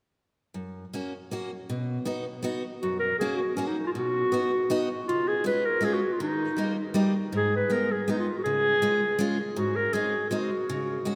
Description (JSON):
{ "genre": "alpine folk, alpine dance band", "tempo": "160 BPM", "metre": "3/4", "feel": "straight", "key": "F# major", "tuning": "A4 = 441 Hz", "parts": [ { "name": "picked steel-string acoustic guitar", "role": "accompaniment", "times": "0.5-11.2 s", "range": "F#2 to F#4", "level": "-32 LUFS", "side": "equal", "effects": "none" }, { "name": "warm clarinet", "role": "melody", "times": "2.8-11.2 s", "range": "C#4 to B4", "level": "-28 LUFS", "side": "equal", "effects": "none" } ], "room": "wet cathedral reverb, RT60 5.7 s", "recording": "in a vast, echoing space", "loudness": "-27 LUFS", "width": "mono", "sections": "0.6-2.8 A section; 2.8-11.2 B section", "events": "none", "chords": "0.6 F#; 1.7 B; 2.8 F#; 4.0 B; 5.1 C#; 6.2 D#; 7.3 G#m; 8.5 C#; 9.6 G#7", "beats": "| 0.56 0.94 1.32 | 1.70 2.07 2.45 | 2.83 3.21 3.58 | 3.96 4.33 4.70 | 5.07 5.45 5.82 | 6.19 6.57 6.95 | 7.33 7.71 8.08 | 8.46 8.83 9.20 | 9.57 9.94 10.31 | 10.69 11.06" }